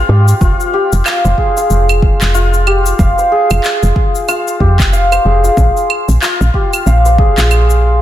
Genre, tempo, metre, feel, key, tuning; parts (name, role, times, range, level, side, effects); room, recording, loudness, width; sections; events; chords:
organic downtempo; 93 BPM; 4/4; swing 59% on 16ths; F minor; A4 = 439 Hz
santur; arpeggios; 0.0-8.0 s; C4 to F5; -14 LUFS; equal; digital delay
woody FM bass; bass; 0.0-8.0 s; F1 to Ab2; -11 LUFS; equal; sidechain pumping
electronic cabasa, handclaps and claves; drums; 0.3-7.8 s; -19 LUFS; right 1 dB; studio reverb
electronic kick drum; drums; 0.4-7.3 s; -13 LUFS; equal; studio reverb
light reverb, digital ambience; dense, heavily limited modern master; -9 LUFS; side -12 dB against mid
0.0-8.0 A section
0.4 Fm; 5.6 Bb5